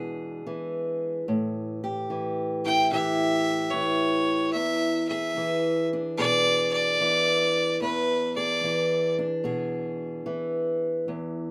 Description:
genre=acoustic country blues, solo or duo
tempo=74 BPM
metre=4/4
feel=swing 67% on 8ths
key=E mixolydian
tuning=A4 = 440 Hz
part: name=fingerpicked steel-string acoustic guitar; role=accompaniment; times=0.0-11.5 s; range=E2 to G#4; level=-29 LUFS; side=equal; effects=none
part: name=clear fiddle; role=melody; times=2.6-9.1 s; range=B4 to G5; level=-27 LUFS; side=equal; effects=none
room=moderate booth ambience, RT60 0.3 s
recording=none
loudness=-26 LUFS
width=mono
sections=0.0-11.5 A section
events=none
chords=0.0 E7; 1.3 A7; 4.5 E7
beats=0.46 | 1.27 2.09 2.91 3.72 | 4.54 5.36 6.17 6.99 | 7.81 8.62 9.44 10.26 | 11.07

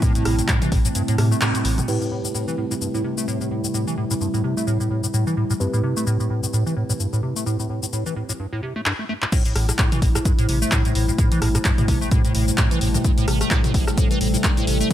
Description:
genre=acid house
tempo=129 BPM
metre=4/4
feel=swing 57% on 16ths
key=A minor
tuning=A4 = 438 Hz
part: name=warbly tape-like pad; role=sustained chords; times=0.0-14.9 s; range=C3 to A4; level=-27 LUFS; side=left 1 dB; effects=chorus, built-in reverb, sidechain pumping
part: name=liquid acid bass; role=riff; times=0.0-14.9 s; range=G2 to A3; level=-23 LUFS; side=equal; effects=phaser, tube saturation, analog chorus, sidechain pumping, digital delay
part: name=electronic kick drum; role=drums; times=0.0-0.8, 9.3-14.9 s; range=none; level=-20 LUFS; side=equal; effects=overdrive
part: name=punchy analog drum machine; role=drums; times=0.0-14.9 s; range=cabasa, crash cymbal, handclaps, hi-hat, rim click, toms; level=-26 LUFS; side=left 2 dB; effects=overdrive
part: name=warbly tape-like pad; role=texture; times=0.0-14.9 s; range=C4 to A5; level=-34 LUFS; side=right 3 dB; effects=chorus, built-in reverb, sidechain pumping
part: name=saturated sub bass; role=bass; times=0.3-1.8, 9.6-14.8 s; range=A1 to A2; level=-23 LUFS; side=equal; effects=sidechain pumping
part: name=mellow tine electric piano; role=stabs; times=1.9-8.4 s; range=C4 to B4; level=-31 LUFS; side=right 2 dB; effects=medium stereo tremolo, low-pass filter, digital delay
room=digital ambience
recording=none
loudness=-18 LUFS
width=side -12 dB against mid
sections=0.0-1.9 A section; 1.9-9.3 B section; 9.3-14.9 C section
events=kick drops out 1.0-1.9; band accent 1.4; filter sweep on acid bass 1.9-9.3; drum fill 8.9-9.3; drop 9.3-14.9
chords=0.0 Am7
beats=| 0.02 0.49 0.95 1.42 | 1.88 2.35 2.81 3.28 | 3.74 4.21 4.67 5.14 | 5.60 6.07 6.53 7.00 | 7.46 7.93 8.39 8.86 | 9.32 9.79 10.25 10.72 | 11.19 11.65 12.12 12.58 | 13.04 13.51 13.97 14.44 | 14.91

